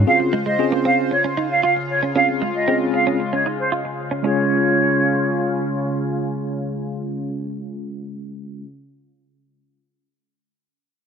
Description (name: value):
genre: pop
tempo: 115 BPM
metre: 4/4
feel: straight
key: Db major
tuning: A4 = 441 Hz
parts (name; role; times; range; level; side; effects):
- chorused pulse-width pad; sustained chords; 0.0-8.7 s; Db3 to C5; -25 LUFS; equal; low-pass filter
- direct-recorded clean electric guitar; riff; 0.0-4.4 s; Ab3 to F4; -26 LUFS; right 4 dB; lush chorus, low-pass filter
- silver concert flute; melody; 0.1-5.8 s; C5 to F5; -20 LUFS; right 1 dB; low-pass filter, digital delay
- tine electric piano; accompaniment; 0.1-8.7 s; Ab3 to Ab4; -23 LUFS; equal; medium stereo tremolo, low-pass filter
room: light reverb, digital ambience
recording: none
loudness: -18 LUFS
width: side -6 dB against mid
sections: 0.1-4.2 A section; 4.2-8.4 B section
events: filter sweep 0.1-4.2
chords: 0.1 Dbmaj7; 4.2 Db